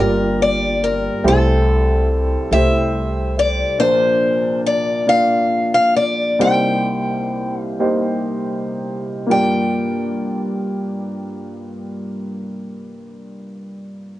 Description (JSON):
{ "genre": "folk", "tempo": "39-47 BPM (dotted quarters)", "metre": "6/8", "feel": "straight", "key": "G minor", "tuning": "A4 = 440 Hz", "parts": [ { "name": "picked steel-string acoustic guitar", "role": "melody", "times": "0.0-12.8 s", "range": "A4 to G5", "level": "-18 LUFS", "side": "left 2 dB", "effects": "none" }, { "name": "warm upright piano", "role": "accompaniment", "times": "0.0-14.2 s", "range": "G1 to D5", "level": "-20 LUFS", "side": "equal", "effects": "none" }, { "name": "upright bass", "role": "bass", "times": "0.0-3.6 s", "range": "G1 to C2", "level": "-19 LUFS", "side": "equal", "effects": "none" } ], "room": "light reverb", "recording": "worn, warbling old tape, cassette tape, warbly pitch drift, nothing above 10.6 kHz", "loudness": "-16 LUFS", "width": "side -15 dB against mid", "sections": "0.0-9.3 A section; 9.3-12.4 B section", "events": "slowing down 3.8-9.3", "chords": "0.0 Gm7; 1.2 C6; 3.8 Bb; 6.4 Cm7; 9.3 Gm7" }